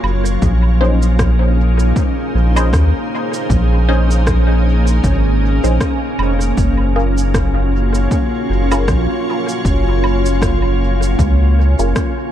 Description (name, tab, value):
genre	ambient dub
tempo	78 BPM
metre	4/4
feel	swing 57% on 16ths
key	Bb minor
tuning	A4 = 440 Hz
part	soft additive organ-like pad	sustained chords	0.0-12.3 s	Gb3 to Db5	-20 LUFS	equal	ensemble chorus, built-in reverb
part	round analog bass	bass	0.0-11.9 s	F1 to Eb2	-14 LUFS	equal	none
part	electronic woodblock, cabasa and rim click	drums	0.0-12.1 s	none	-26 LUFS	right 1 dB	studio reverb, dub echo
part	electronic kick drum	drums	0.4-12.1 s	none	-18 LUFS	equal	overdrive, studio reverb
part	backwards swelling texture	texture	2.1-12.3 s	Db4	-26 LUFS	right 1 dB	built-in reverb
part	filtered dub chord stab	stabs	0.8-11.9 s	Db4 to C5	-25 LUFS	left 1 dB	phaser, dub echo
room	little or no reverb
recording	dark, warm production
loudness	-12 LUFS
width	side -11 dB against mid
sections	0.0-12.3 A section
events	none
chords	0.4 Bbm11; 6.6 Gbmaj7